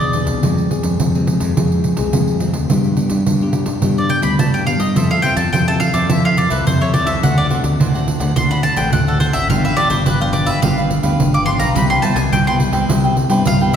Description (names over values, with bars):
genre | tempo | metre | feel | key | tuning
samba and choro | 106 BPM | 4/4 | straight | unclear | A4 = 440 Hz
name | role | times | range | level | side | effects
mandolin | melody | 0.0-13.7 s | A4 to D6 | -19 LUFS | equal | none
nylon-string guitar | accompaniment | 0.0-13.8 s | G2 to A4 | -21 LUFS | left 4 dB | none
growling fingered electric bass | bass | 0.0-13.8 s | G1 to G2 | -19 LUFS | equal | overdrive
pandeiro | percussion | 0.0-13.8 s | none | -18 LUFS | right 2 dB | none
cavaquinho | accompaniment | 5.0-13.8 s | D4 to G5 | -23 LUFS | right 2 dB | none
room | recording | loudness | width
wet concert hall reverb, RT60 2.0 s | recorded in a church or concert hall | -13 LUFS | side -8 dB against mid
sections
0.0-13.8 A section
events
mandolin solo 0.0-13.8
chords
0.4 Fm; 2.7 G; 5.0 Fmaj7; 7.2 D7; 9.5 G7; 11.8 Cmaj7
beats
| 0.43 1.00 1.57 2.13 | 2.70 3.27 3.83 4.40 | 4.96 5.53 6.10 6.66 | 7.23 7.80 8.36 8.93 | 9.49 10.06 10.63 11.19 | 11.76 12.33 12.89 13.46